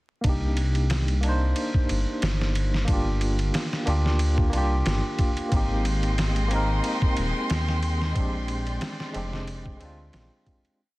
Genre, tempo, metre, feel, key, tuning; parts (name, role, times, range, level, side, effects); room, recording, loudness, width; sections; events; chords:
trip hop; 91 BPM; 4/4; swing 55% on 16ths; C minor; A4 = 442 Hz
barky tine electric piano; accompaniment; 0.2-10.8 s; Ab3 to C5; -29 LUFS; equal; overdrive, tremolo, vintage 12-bit sampler grit, tape echo
dark detuned saw bass; bass; 0.2-10.3 s; Eb1 to Eb2; -25 LUFS; equal
trip hop sampler-style drum kit; drums; 0.2-10.8 s; kick drum, ride cymbal, snare drum; -28 LUFS; equal; vintage 12-bit sampler grit, small room ambience
rich studio violin section; sustained chords; 5.5-10.8 s; Ab3 to C6; -33 LUFS; equal
digital ambience; dense, heavily limited modern master, vinyl crackle; -22 LUFS; side -20 dB against mid
0.2-10.8 groove
fade-out 7.3-10.8
0.2 Cm7; 2.9 Gm7; 5.5 Abmaj7; 8.2 Bb13